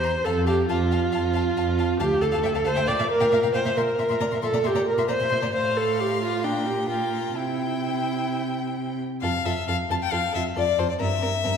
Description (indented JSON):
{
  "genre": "quick classical-period movement for string quartet",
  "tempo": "135 BPM",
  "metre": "4/4",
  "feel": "straight",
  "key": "F major",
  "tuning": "A4 = 440 Hz",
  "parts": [
    { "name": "clear violin", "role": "melody", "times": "0.0-11.6 s", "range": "C5 to C6", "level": "-30 LUFS", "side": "left 8 dB", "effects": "none" },
    { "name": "clear violin", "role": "second line", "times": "0.0-11.5 s", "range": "A4 to Bb5", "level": "-33 LUFS", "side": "left 3 dB", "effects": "none" },
    { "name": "rich viola", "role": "accompaniment", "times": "0.0-11.5 s", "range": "C4 to D5", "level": "-24 LUFS", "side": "right 1 dB", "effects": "none" },
    { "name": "clear cello", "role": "bass", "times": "0.0-11.5 s", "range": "D2 to C3", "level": "-27 LUFS", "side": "right 2 dB", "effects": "none" }
  ],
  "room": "wet scoring stage reverb, RT60 1.7 s",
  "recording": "heard from further back in the room",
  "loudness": "-22 LUFS",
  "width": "side -7 dB against mid",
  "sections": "0.0-9.2 A section; 9.2-11.6 B section",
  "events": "none",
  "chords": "0.2 F; 2.0 Dm; 2.9 Gm7/Bb (rootless); 3.8 C7(no3)/Bb; 5.5 F/A; 6.4 Gm7/Bb; 7.4 C; 9.2 F; 11.0 C7/G",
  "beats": "| 0.25 0.69 1.13 1.56 | 2.00 2.44 2.88 3.32 | 3.77 4.21 4.66 5.10 | 5.54 5.99 6.44 6.90 | 7.36 7.83 8.29 8.76 | 9.23 9.68 10.12 10.56 | 11.01 11.45"
}